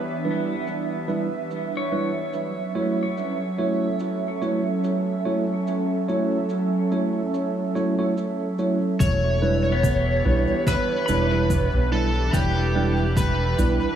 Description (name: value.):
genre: ambient dub.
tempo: 72 BPM.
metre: 4/4.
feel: swing 56% on 16ths.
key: E dorian.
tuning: A4 = 440 Hz.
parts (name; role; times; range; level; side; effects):
airy breathy pad; sustained chords; 0.0-14.0 s; E3 to E5; -27 LUFS; right 2 dB; chorus.
pedal steel guitar; arpeggios; 0.0-4.2, 9.7-13.5 s; B3 to B5; -33 LUFS; left 4 dB; dub echo.
tine electric piano; stabs; 0.2-13.9 s; G3 to C#5; -26 LUFS; right 2 dB; dub echo.
cabasa and rim click; drums; 0.7-13.8 s; none; -37 LUFS; right 1 dB; low-pass filter on snare, low-pass filter on perc, low-pass filter on room, dub echo.
overdriven slide guitar; melody; 9.0-14.0 s; G4 to C#5; -26 LUFS; equal; dub echo.
round analog bass; bass; 9.0-13.8 s; E1 to B1; -22 LUFS; equal; tube saturation.
electronic kick drum; drums; 9.0-13.4 s; none; -24 LUFS; equal; none.
room: moderate spring reverb, RT60 2.7 s.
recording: echo-heavy mix, studio reverb.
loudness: -21 LUFS.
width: side -9 dB against mid.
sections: 0.0-9.0 A section; 9.0-14.0 B section.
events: filter sweep on pedal steel guitar 0.0-9.0.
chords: 0.0 Em7; 2.3 F#m7; 9.0 Em7.